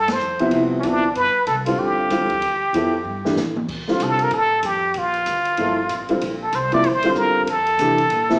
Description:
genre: modal jazz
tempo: 190 BPM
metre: 4/4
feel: swing 61% on 8ths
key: G mixolydian, Bb lydian from 3.7 s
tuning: A4 = 441 Hz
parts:
  - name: trumpet with plunger mute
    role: melody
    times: 0.0-8.4 s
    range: C#4 to D5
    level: -19 LUFS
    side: equal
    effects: none
  - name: upright bass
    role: bass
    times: 0.0-8.4 s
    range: G1 to C3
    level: -32 LUFS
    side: equal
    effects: none
  - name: open jazz drum kit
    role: drums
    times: 0.1-8.4 s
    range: crash cymbal, hi-hat, kick drum, ride cymbal, snare drum, toms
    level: -31 LUFS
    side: equal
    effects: none
  - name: warm upright piano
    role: accompaniment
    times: 0.4-8.4 s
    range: C3 to A4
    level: -20 LUFS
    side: equal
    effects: none
room: wet large studio reverb, RT60 0.8 s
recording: heard from further back in the room, small speaker sound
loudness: -17 LUFS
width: side -30 dB against mid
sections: 0.0-3.7 A section; 3.7-8.4 B section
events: band accent 0.0; drum fill 3.1-3.7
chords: 0.0 G9sus4; 3.7 Bbmaj9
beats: 0.20 0.52 0.84 | 1.15 1.47 1.79 2.10 | 2.42 2.74 3.05 3.37 | 3.69 4.00 4.32 4.63 | 4.95 5.27 5.58 5.90 | 6.21 6.53 6.84 7.16 | 7.47 7.79 8.11

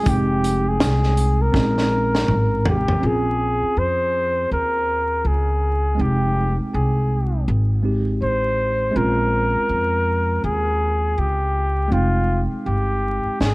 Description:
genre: hip hop, jazz-hop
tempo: 81 BPM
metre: 4/4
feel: swing 61% on 16ths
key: Bb dorian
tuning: A4 = 441 Hz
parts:
  - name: breathy flugelhorn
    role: melody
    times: 0.0-13.5 s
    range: F4 to C5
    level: -22 LUFS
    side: equal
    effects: analog delay
  - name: tine electric piano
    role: accompaniment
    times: 0.0-13.5 s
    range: Ab3 to G5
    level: -25 LUFS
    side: right 1 dB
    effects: medium stereo tremolo
  - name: upright bass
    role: bass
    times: 0.1-13.5 s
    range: F1 to F2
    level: -21 LUFS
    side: equal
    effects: none
  - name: crunchy breakbeat drum kit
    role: drums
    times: 0.1-3.0, 13.4-13.5 s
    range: hi-hat, kick drum, snare drum, toms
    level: -21 LUFS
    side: equal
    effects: none
room: small room ambience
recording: vinyl crackle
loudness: -18 LUFS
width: side -22 dB against mid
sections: 0.0-3.0 A section; 3.0-13.5 B section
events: drum fill 1.5-3.0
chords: 0.1 Fm9; 1.5 Bbm11; 3.0 Bbm9; 6.0 Fm9; 9.0 Bbm9; 11.9 Fm9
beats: | 0.07 0.81 1.55 2.29 | 3.03 3.77 4.51 5.25 | 5.99 6.73 7.47 8.21 | 8.96 9.70 10.44 11.18 | 11.92 12.66 13.40

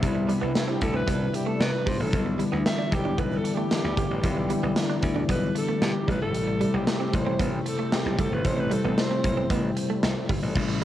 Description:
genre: 1980s-style pop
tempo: 114 BPM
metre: 4/4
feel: straight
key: unclear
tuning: A4 = 442 Hz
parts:
  - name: bell-like tine electric piano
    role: accompaniment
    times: 0.0-10.8 s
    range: C3 to E4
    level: -29 LUFS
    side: left 5 dB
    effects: cassette tape
  - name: lush unison pad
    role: sustained chords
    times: 0.0-10.8 s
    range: C3 to C5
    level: -32 LUFS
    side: equal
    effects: chorus, phaser, cassette tape
  - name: glassy slap bass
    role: bass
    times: 0.0-10.8 s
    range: F#1 to C3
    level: -29 LUFS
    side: equal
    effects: transformer saturation
  - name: big rock drum kit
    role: drums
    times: 0.0-10.7 s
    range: crash cymbal, hi-hat, kick drum, snare drum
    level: -28 LUFS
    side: equal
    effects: cassette tape
  - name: direct-recorded clean electric guitar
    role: riff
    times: 0.2-10.8 s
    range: G3 to D4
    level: -33 LUFS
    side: right 6 dB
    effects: analog chorus, cassette tape
  - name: breathy alto saxophone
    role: melody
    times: 0.6-9.7 s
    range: E4 to E5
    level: -31 LUFS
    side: right 1 dB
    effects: cassette tape, plate reverb
room: wet studio reverb, RT60 0.6 s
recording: home recording on cassette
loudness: -23 LUFS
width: side -12 dB against mid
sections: 0.0-10.6 A section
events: alto saxophone solo 0.0-10.6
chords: 0.0 Cmaj7; 2.1 Em7; 6.1 Am7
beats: | 0.03 0.56 1.08 1.61 | 2.13 2.66 3.19 3.71 | 4.24 4.76 5.29 5.82 | 6.34 6.87 7.40 7.92 | 8.45 8.98 9.50 10.03 | 10.55

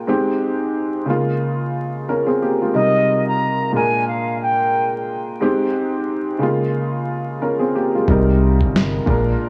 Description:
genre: hip hop, boom-bap hip-hop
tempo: 90 BPM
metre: 4/4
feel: swing 60% on 16ths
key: C minor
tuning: A4 = 440 Hz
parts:
  - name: dark upright piano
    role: accompaniment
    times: 0.0-9.5 s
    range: Ab2 to Bb4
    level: -21 LUFS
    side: equal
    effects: cassette tape, high-pass filter, low-pass filter
  - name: silver concert flute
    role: melody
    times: 2.7-4.9 s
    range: Eb5 to Bb5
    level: -22 LUFS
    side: equal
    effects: high-pass filter, low-pass filter, digital delay
  - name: deep dub fingered electric bass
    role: bass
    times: 8.1-9.3 s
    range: G1 to C2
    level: -22 LUFS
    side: equal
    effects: none
  - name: boom bap sampler-style drum kit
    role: drums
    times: 8.1-9.3 s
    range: kick drum, snare drum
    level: -21 LUFS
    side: equal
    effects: none
room: light reverb, small room ambience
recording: vinyl crackle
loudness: -19 LUFS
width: mono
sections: 0.0-8.1 A section; 8.1-9.5 B section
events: hi-hats muted 8.1-9.5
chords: 0.1 Abmaj7; 1.1 Db6; 2.7 Cm7; 3.7 Bb7; 5.4 Abmaj7; 6.4 Db6; 8.1 Cm7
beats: | 0.08 0.75 1.41 2.08 | 2.75 3.41 4.08 4.75 | 5.41 6.08 6.75 7.41 | 8.08 8.75 9.41

